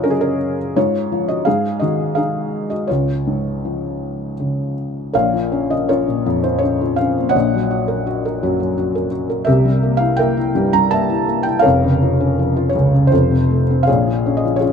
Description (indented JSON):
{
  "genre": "classical, lyrical solo piano",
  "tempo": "82 BPM",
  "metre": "3/4",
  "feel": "rubato",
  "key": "Db major, Bb minor from 5.1 s",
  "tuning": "A4 = 440 Hz",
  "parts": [
    { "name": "felt-muted upright piano", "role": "solo", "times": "0.0-14.7 s", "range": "F1 to Bb5", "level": "-15 LUFS", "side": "left 1 dB", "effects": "none" }
  ],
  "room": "light reverb",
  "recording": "minimal, uncompressed stereo recording",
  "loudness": "-15 LUFS",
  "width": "side -6 dB against mid",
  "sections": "0.0-5.1 A section; 5.1-14.7 B section",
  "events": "none",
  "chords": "0.0 Gbadd9; 0.8 Db/Ab; 1.5 Ab5; 2.9 Db; 5.1 Bbm; 7.3 Ebm7/Bb; 9.5 C7; 11.7 Bbm/F; 13.1 F; 13.9 Bbm7",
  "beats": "0.05 | 0.76 1.46 2.17 | 2.90 3.64 4.39 | 5.14 5.89 6.63 | 7.35 8.06 8.77 | 9.48 10.20 10.92 | 11.65 12.39 13.13 | 13.88 14.62"
}